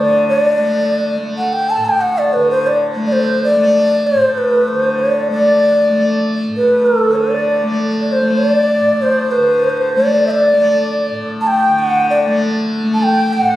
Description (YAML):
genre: indian classical, Hindustani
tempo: 97 BPM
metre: 4/4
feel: straight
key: A raga bageshri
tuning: A4 = 439 Hz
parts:
  - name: breathy bass bansuri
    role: melody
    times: 0.0-13.6 s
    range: A4 to A5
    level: -13 LUFS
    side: equal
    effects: none
  - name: tanpura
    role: drone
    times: 0.0-13.6 s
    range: A2 to A3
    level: -19 LUFS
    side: left 1 dB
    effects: none
  - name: hand-pumped harmonium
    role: second line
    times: 5.4-13.6 s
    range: A4 to G5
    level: -23 LUFS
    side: left 1 dB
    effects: none
room: moderate recital hall reverb, RT60 1.5 s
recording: recorded on a phone in the room, club reverb, compression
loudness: -12 LUFS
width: side -14 dB against mid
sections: 0.0-13.6 A section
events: speeding up 0.0-13.6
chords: none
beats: | 0.28 0.91 1.54 2.17 | 2.80 3.42 4.05 4.67 | 5.30 5.92 6.54 7.17 | 7.79 8.40 9.02 9.64 | 10.25 10.87 11.48 12.09 | 12.71 13.31